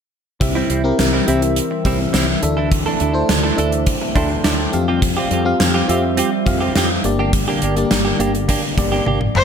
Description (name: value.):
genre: 1980s-style pop.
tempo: 104 BPM.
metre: 4/4.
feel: straight.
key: C mixolydian.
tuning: A4 = 442 Hz.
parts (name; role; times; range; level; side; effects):
FM electric piano; accompaniment; 0.4-9.4 s; Bb3 to D6; -21 LUFS; left 2 dB; chorus.
phased analog pad; sustained chords; 0.4-9.4 s; D3 to D4; -25 LUFS; equal; phaser, chorus.
direct-recorded clean electric guitar; riff; 0.4-9.4 s; G3 to A4; -23 LUFS; right 4 dB; analog chorus, ping-pong delay.
woody fretless electric bass; bass; 0.4-9.4 s; G1 to F2; -21 LUFS; equal; lush chorus.
gated 80s drum kit; drums; 0.4-9.4 s; hi-hat, kick drum, snare drum, toms; -19 LUFS; equal; none.
bright erhu; melody; 9.4 s; C5; -13 LUFS; left 3 dB; none.
room: moderate plate reverb, RT60 1.6 s, small room reverb.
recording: none.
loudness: -15 LUFS.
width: side -7 dB against mid.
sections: 0.4-9.4 A section.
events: drum fill 9.1-9.4.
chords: 0.4 C; 2.4 Dsus2; 4.7 Fsus2; 7.0 Gm.